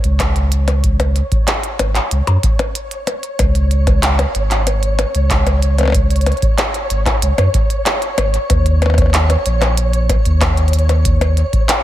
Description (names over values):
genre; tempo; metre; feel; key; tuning
IDM; 94 BPM; 4/4; straight; unclear; A4 = 439 Hz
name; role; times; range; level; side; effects
warm sub bass; bass; 0.0-11.4 s; G#1 to F#2; -14 LUFS; equal; none
glitchy drum kit; drums; 0.0-11.8 s; handclaps, hi-hat, percussion blips; -19 LUFS; left 1 dB; overdrive, ping-pong delay
flickering grainy texture; texture; 0.0-11.8 s; C#5; -24 LUFS; equal; built-in reverb
electronic kick drum; drums; 0.2-11.7 s; none; -18 LUFS; equal; none
room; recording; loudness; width
little or no reverb; none; -13 LUFS; side -13 dB against mid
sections
0.0-11.8 A section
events
none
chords
0.0 C#5; 8.5 D#5